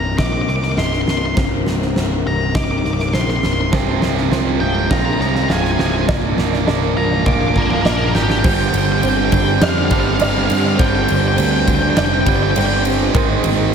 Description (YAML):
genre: post-rock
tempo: 102 BPM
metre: 4/4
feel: straight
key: unclear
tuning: A4 = 441 Hz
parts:
  - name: octave-fuzz lead guitar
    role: melody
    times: 0.0-12.8 s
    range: F5 to D6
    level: -22 LUFS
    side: left 1 dB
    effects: distortion, tape echo
  - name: dark chamber string section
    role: sustained chords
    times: 0.0-13.7 s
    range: D3 to C5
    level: -27 LUFS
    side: left 3 dB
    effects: none
  - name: felt-muted upright piano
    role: arpeggios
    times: 0.0-13.7 s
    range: Bb4 to F5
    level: -28 LUFS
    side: right 3 dB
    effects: tape echo
  - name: twelve-string electric guitar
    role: arpeggios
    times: 0.0-13.7 s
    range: C2 to Bb4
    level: -26 LUFS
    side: left 4 dB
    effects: none
  - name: fuzz picked electric bass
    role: bass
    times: 0.0-13.7 s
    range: C1 to G2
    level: -20 LUFS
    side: equal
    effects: overdrive
  - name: huge arena drum kit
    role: drums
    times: 0.2-13.6 s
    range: crash cymbal, kick drum, ride cymbal, snare drum, toms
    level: -20 LUFS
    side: left 1 dB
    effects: none
  - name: tight distorted guitar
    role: riff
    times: 3.7-13.7 s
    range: F2 to Bb3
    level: -19 LUFS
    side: right 9 dB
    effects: distortion
room: moderate lush hall reverb, RT60 2.0 s, small room ambience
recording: dreamy mix soaked in reverb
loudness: -14 LUFS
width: side -7 dB against mid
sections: 0.0-8.4 A section; 8.4-13.7 B section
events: build-up 0.0-8.4; drum fill 7.3-8.4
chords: 0.0 Cm7; 3.7 Fm/C; 6.1 Bb/C; 8.4 Gsus4; 13.1 Abadd9